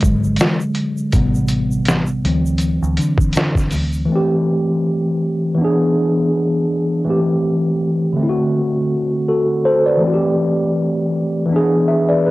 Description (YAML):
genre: lo-fi hip hop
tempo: 81 BPM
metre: 4/4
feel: swing 56% on 16ths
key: A dorian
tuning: A4 = 439 Hz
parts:
  - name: tine electric piano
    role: accompaniment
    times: 0.0-12.3 s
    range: C3 to E5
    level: -16 LUFS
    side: equal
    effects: medium stereo tremolo, cassette tape, low-pass filter
  - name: vintage muted fingered electric bass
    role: bass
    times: 0.0-4.1 s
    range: G#1 to D3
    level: -20 LUFS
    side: equal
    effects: none
  - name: trip hop sampler-style drum kit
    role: drums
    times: 0.0-3.9 s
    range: hi-hat, kick drum, snare drum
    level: -18 LUFS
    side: equal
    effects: vintage 12-bit sampler grit, cassette tape
  - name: egg shaker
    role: percussion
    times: 0.0-4.1 s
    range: none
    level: -39 LUFS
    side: right 3 dB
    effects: none
room: wet booth ambience, RT60 0.2 s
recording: home recording on cassette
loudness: -15 LUFS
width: side -18 dB against mid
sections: 0.0-4.1 A section; 4.1-12.3 B section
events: tine electric piano solo 0.0-4.1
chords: 0.0 E7 (rootless); 1.1 Am7; 2.2 D7; 4.1 Am7; 5.6 E7; 7.1 Am7; 8.2 D7; 10.0 Am7; 11.5 E7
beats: 0.39 | 1.13 1.87 2.61 3.35 | 4.09 4.83 5.57 6.31 | 7.05 7.79 8.53 9.28 | 10.02 10.76 11.50 12.24